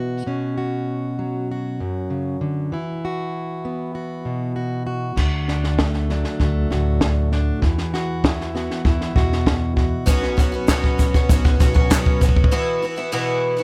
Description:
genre	indie folk with a building arrangement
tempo	98 BPM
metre	4/4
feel	straight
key	unclear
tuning	A4 = 441 Hz
part	fingerpicked plugged-in steel-string acoustic guitar	accompaniment	0.0-12.5 s	F#2 to F#4	-27 LUFS	equal	none
part	upright bass	bass	5.2-12.4 s	B1 to E2	-25 LUFS	equal	none
part	compact cocktail drum kit	drums	5.2-12.6 s	crash cymbal, kick drum, snare drum	-21 LUFS	equal	none
part	picked twelve-string acoustic guitar	accompaniment	10.1-13.6 s	E2 to F#4	-24 LUFS	equal	none
part	tube shaker	percussion	10.1-12.4 s	none	-39 LUFS	equal	none
part	group handclap	percussion	10.7-12.1 s	none	-29 LUFS	equal	none
room	light reverb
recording	faint mains hum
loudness	-21 LUFS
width	mono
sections	0.0-5.2 A section; 5.2-13.6 B section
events	build-up 5.2-13.6; drum fill 5.2-12.5; break 12.5-13.6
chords	0.3 Bsus2; 2.7 Esus2; 5.2 D; 7.6 Esus2; 10.1 Bsus2; 12.5 Esus2

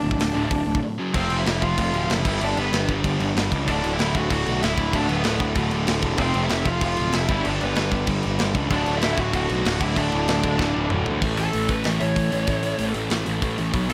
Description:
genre	punk rock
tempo	191 BPM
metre	4/4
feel	straight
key	unclear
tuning	A4 = 438 Hz
part	lead guitar through a small cranked amp	melody	0.0-13.9 s	B3 to F#5	-29 LUFS	equal	overdrive
part	overdriven semi-hollow guitar	riff	0.0-13.9 s	D2 to G4	-31 LUFS	equal	none
part	sludgy distorted guitar	riff	0.0-13.9 s	D2 to B3	-32 LUFS	equal	none
part	fuzz picked electric bass	bass	0.0-13.9 s	D1 to D2	-28 LUFS	equal	overdrive
part	tight metal drum kit	drums	0.1-13.9 s	crash cymbal, hi-hat, kick drum, snare drum, toms	-29 LUFS	equal	none
part	distorted electric guitar	riff	1.1-11.2 s	D2 to G3	-32 LUFS	equal	overdrive
room	light reverb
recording	none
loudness	-23 LUFS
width	mono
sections	0.0-1.1 A section; 1.1-11.2 B section; 11.2-13.9 C section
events	break 0.8-1.1; drum fill 10.6-11.2; half time 11.2-13.9; lead electric guitar solo 11.2-13.9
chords	0.0 D5; 1.0 F#5; 1.1 F; 2.3 G; 3.7 D; 6.2 F; 7.3 G; 8.7 D; 11.2 A

